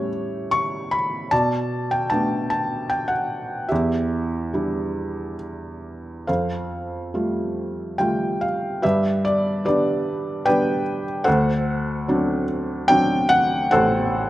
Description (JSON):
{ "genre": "classical, lyrical solo piano", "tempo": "66-77 BPM", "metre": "3/4", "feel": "rubato", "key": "E dorian", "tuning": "A4 = 440 Hz", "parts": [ { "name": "felt-muted upright piano", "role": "solo", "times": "0.0-14.3 s", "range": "A1 to C#6", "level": "-20 LUFS", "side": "equal", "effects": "none" } ], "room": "light reverb", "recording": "close, detailed microphones", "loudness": "-20 LUFS", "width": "side -15 dB against mid", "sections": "0.0-6.3 A section; 6.3-14.3 B section", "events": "none", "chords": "0.0 A7; 1.3 Bm7; 3.7 Em7; 6.3 Fadd9; 8.8 G; 11.3 D7" }